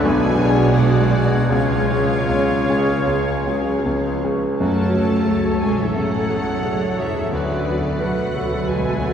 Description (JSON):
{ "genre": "classical", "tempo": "74-92 BPM", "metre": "4/4", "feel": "rubato", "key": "F# minor", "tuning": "A4 = 440 Hz", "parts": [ { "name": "clear concert grand piano", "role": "melody", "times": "0.0-9.1 s", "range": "B1 to B4", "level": "-22 LUFS", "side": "left 1 dB", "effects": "none" }, { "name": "warm symphonic violin section", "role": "melody", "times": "0.0-9.1 s", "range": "D5 to A5", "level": "-32 LUFS", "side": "left 2 dB", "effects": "none" }, { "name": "bright concert flute", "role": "second line", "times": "0.0-9.1 s", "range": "B4 to G#6", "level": "-32 LUFS", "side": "left 1 dB", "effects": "none" }, { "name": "clear clarinet", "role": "second line", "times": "0.0-9.1 s", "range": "C#4 to B4", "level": "-33 LUFS", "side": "left 1 dB", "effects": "none" }, { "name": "warm oboe", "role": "second line", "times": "0.0-9.1 s", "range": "F#4 to D5", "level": "-31 LUFS", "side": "equal", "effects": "none" }, { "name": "warm symphonic violin section", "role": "second line", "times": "0.0-9.1 s", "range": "B4 to A5", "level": "-32 LUFS", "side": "left 2 dB", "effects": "none" }, { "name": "mellow bassoon", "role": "accompaniment", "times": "0.0-9.1 s", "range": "F#3 to C#4", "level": "-30 LUFS", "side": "right 1 dB", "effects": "none" }, { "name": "rich symphonic viola section", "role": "accompaniment", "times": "0.0-9.1 s", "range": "E#3 to C#5", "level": "-27 LUFS", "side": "equal", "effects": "none" }, { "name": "clear trombone section", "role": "sustained chords", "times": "0.0-4.2 s", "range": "B2 to G#3", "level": "-30 LUFS", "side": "equal", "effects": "none" }, { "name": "mellow French horn section", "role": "sustained chords", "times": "0.0-9.1 s", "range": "F#2 to G#4", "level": "-29 LUFS", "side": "left 4 dB", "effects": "none" }, { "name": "warm trumpet", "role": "stabs", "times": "0.0-4.2 s", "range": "E#4 to G#4", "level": "-30 LUFS", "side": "equal", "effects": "none" }, { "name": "clear symphonic double bass section", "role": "bass", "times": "0.0-9.1 s", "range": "A1 to F#2", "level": "-25 LUFS", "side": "right 3 dB", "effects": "none" }, { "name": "rich symphonic cello section", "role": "bass", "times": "0.0-9.1 s", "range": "B2 to A3", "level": "-25 LUFS", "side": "right 1 dB", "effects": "none" } ], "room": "wet cathedral reverb, RT60 5.5 s", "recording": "heard from further back in the room", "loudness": "-17 LUFS", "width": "side -8 dB against mid", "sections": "0.0-4.6 A section; 4.6-9.1 B section", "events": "none", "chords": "0.0 G#dim/B; 1.5 C#; 4.6 F#m" }